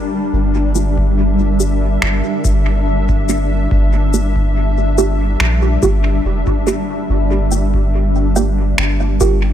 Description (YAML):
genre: ambient dub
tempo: 71 BPM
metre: 4/4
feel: straight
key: G dorian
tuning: A4 = 440 Hz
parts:
  - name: granular cloud pad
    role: sustained chords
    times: 0.0-9.5 s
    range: G3 to E5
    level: -19 LUFS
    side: left 1 dB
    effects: built-in reverb
  - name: filtered dub chord stab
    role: stabs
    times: 0.0-9.5 s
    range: Bb3 to G4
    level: -21 LUFS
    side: right 5 dB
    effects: phaser, dub echo
  - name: soft dub sub bass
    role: bass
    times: 0.3-9.5 s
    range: F1 to Bb1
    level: -16 LUFS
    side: equal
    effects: none
  - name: electronic shaker and finger snaps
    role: drums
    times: 0.8-9.4 s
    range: none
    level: -22 LUFS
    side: left 1 dB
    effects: overdrive, dub echo
  - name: electronic kick drum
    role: drums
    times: 1.0-9.4 s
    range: none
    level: -19 LUFS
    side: equal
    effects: none
room: light reverb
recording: none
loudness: -13 LUFS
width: side -10 dB against mid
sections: 0.0-9.5 A section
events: filter sweep on synth stab 0.0-9.5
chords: 0.0 Gm7